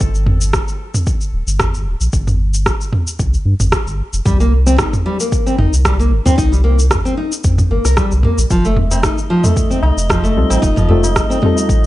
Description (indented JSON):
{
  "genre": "organic downtempo",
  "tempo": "113 BPM",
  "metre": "4/4",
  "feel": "swing 55% on 16ths",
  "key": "unclear",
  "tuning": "A4 = 440 Hz",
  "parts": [
    { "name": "warm sub bass", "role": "bass", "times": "0.0-11.9 s", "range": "D1 to G2", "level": "-15 LUFS", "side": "equal", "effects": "sidechain pumping" },
    { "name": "deep house drum kit", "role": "drums", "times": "0.0-11.8 s", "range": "cabasa, rim click, toms", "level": "-18 LUFS", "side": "equal", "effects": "none" },
    { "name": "electronic kick drum", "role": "drums", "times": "0.0-11.8 s", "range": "none", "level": "-19 LUFS", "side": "equal", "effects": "overdrive" },
    { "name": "nylon-string guitar", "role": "arpeggios", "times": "4.3-11.6 s", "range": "F3 to Bb4", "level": "-18 LUFS", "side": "equal", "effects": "analog delay" },
    { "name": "drifting glass-harmonics texture", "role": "texture", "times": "9.2-11.9 s", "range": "Eb4 to Eb5", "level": "-24 LUFS", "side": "right 1 dB", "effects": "chorus, built-in reverb" },
    { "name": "tabla", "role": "percussion", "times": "8.8-11.9 s", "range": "none", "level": "-21 LUFS", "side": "left 1 dB", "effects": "none" },
    { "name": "deep mellow chord stab", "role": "accompaniment", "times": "10.4-11.9 s", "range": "G3 to A4", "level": "-18 LUFS", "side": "left 2 dB", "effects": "chorus, sidechain pumping, analog delay" }
  ],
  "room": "light reverb",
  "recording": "dry, gritty hardware recording, cassette tape, nothing above 11.0 kHz",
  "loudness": "-12 LUFS",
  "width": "side -16 dB against mid",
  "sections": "0.0-11.9 A section",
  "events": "none",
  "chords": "0.0 N.C.; 4.3 Cm7; 8.5 F7"
}